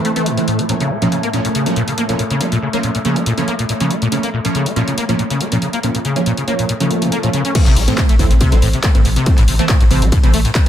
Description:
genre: driving peak-time techno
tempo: 140 BPM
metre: 4/4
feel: straight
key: unclear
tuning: A4 = 440 Hz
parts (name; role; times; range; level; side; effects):
- acid bass, saw; riff; 0.0-10.7 s; A2 to Db4; -19 LUFS; left 2 dB; ensemble chorus, sidechain pumping, dub echo
- rave stab; stabs; 0.0-10.7 s; E3 to Db4; -20 LUFS; right 3 dB; chorus, built-in reverb, sidechain pumping, dub echo
- overtone-sweeping drone; drone; 0.0-7.6 s; A2 to A3; -25 LUFS; left 1 dB; chorus, built-in reverb, phaser, sidechain pumping
- punchy analog drum machine; drums; 0.0-10.7 s; crash cymbal, handclaps, hi-hat, ride cymbal; -23 LUFS; left 1 dB; none
- swell; sound effects; 6.9-7.5 s; none; -25 LUFS; left 1 dB; none
- electronic kick drum; drums; 7.5-10.6 s; none; -13 LUFS; equal; none
- jazz brush drum kit; drums; 7.5-10.7 s; hi-hat, snare drum; -32 LUFS; left 2 dB; none
- saturated sub bass; bass; 7.7-10.7 s; A1; -15 LUFS; equal; overdrive, sidechain pumping, low-pass filter
room: light reverb, digital ambience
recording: echo-heavy mix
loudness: -13 LUFS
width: side -10 dB against mid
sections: 0.0-7.5 A section; 7.5-10.7 B section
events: swell 6.9-7.5; drop 7.5-10.7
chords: 0.0 Am; 0.7 Bbm; 7.5 Am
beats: 0.26 | 0.69 1.12 1.55 1.98 | 2.41 2.83 3.26 3.69 | 4.12 4.55 4.98 5.41 | 5.83 6.26 6.69 7.12 | 7.55 7.98 8.41 8.84 | 9.26 9.69 10.12 10.55

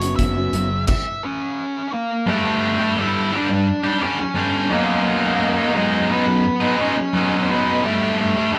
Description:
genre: quiet-loud alternative rock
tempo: 86 BPM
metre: 4/4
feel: straight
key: unclear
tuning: A4 = 439 Hz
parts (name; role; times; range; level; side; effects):
- octave-fuzz lead guitar; melody; 0.0-8.6 s; G#3 to E5; -24 LUFS; equal; distortion
- fingerpicked steel-string acoustic guitar; arpeggios; 0.0-0.7 s; F#2 to F#4; -27 LUFS; equal; none
- fuzz fingered electric bass; bass; 0.0-0.8 s; F#1; -27 LUFS; equal; overdrive
- loose indie drum kit; drums; 0.0-1.0 s; crash cymbal, hi-hat, kick drum; -24 LUFS; equal; none
- high-gain distorted guitar; riff; 2.3-8.6 s; B1 to G4; -21 LUFS; equal; distortion
room: moderate stone room reverb, RT60 1.4 s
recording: band playing live in one room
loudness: -20 LUFS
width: mono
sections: 0.0-2.3 A section; 2.3-8.6 B section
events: half time 0.0-2.3; stop 0.9-2.3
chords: 0.0 F#7sus4; 2.3 Gsus2; 4.7 B6; 7.8 Gsus2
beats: 0.19 0.88 1.58 | 2.28 2.97 3.67 4.36 | 5.06 5.75 6.44 7.14 | 7.83 8.52

